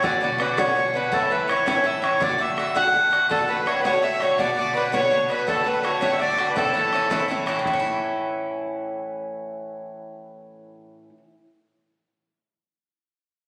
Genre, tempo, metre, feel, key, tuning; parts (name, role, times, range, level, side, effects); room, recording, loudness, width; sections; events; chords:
celtic folk, Celtic jig; 110 BPM (dotted quarters); 6/8; straight; A major; A4 = 440 Hz
accordion; melody; 0.0-7.3 s; A4 to F#5; -24 LUFS; equal
Irish bouzouki; accompaniment; 0.0-11.3 s; A2 to F#4; -28 LUFS; equal
bodhran; percussion; 0.0-7.8 s; -35 LUFS; equal
warm fiddle; second line; 3.3-7.3 s; A4 to E5; -29 LUFS; equal
wet recital hall reverb, RT60 1.8 s; recorded on a phone in the room, studio reverb; -22 LUFS; mono
0.0-7.7 A section; 7.7-9.8 B section
0.0 Bmadd9; 1.1 A; 2.2 D; 4.4 Bm; 5.5 D; 6.6 A